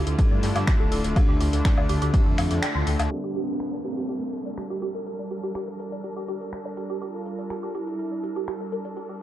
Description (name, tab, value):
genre	melodic techno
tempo	123 BPM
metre	4/4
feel	straight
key	G dorian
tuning	A4 = 435 Hz
part	rich studio string section	sustained chords	0.0-9.2 s	D3 to Bb4	-35 LUFS	right 2 dB	sidechain pumping, low-pass filter
part	woody wave-folded pluck	arpeggios	0.0-9.1 s	F4 to A5	-33 LUFS	right 1 dB	phaser, wide subtle chorus, vintage 12-bit sampler grit, sidechain pumping, dub echo
part	swelling detuned saw bass	bass	0.0-3.1 s	D1 to G2	-25 LUFS	equal	sidechain pumping
part	house drum kit	drums	0.1-9.1 s	finger snaps, hi-hat, woodblock	-32 LUFS	left 2 dB	none
part	brassy analog pad	stabs	0.2-3.1 s	D3 to D4	-30 LUFS	left 2 dB	chorus, sidechain pumping, dub echo
part	electronic kick drum	drums	0.2-2.2 s	none	-21 LUFS	equal	none
part	vintage brush drum kit	drums	0.2-3.1 s	ride cymbal, snare drum	-41 LUFS	equal	sidechain pumping on cymbals, high-pass filter on cymbals, high-pass filter on snare, high-pass filter on room
part	expressive synth lead	melody	3.1-8.6 s	C4 to F4	-32 LUFS	equal	lush chorus, cassette tape, sidechain pumping
part	downlifter	sound effects	3.1-7.0 s	none	-37 LUFS	right 1 dB	none
room	light reverb, small room reverb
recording	dark, warm production, low-pass filter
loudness	-23 LUFS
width	side -13 dB against mid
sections	0.0-3.1 A section; 3.1-9.2 B section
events	break 2.6-3.1; band accent 2.6; filter sweep on synth pluck 3.1-9.2; filter sweep on analog synth lead 3.1-9.2; filter sweep on string section 3.1-9.2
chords	0.0 Dmadd9; 3.1 Gm7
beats	0.19 0.67 | 1.16 1.65 2.14 2.62 | 3.11 3.60 4.09 4.58 | 5.06 5.55 6.04 6.53 | 7.02 7.50 7.99 8.48 | 8.97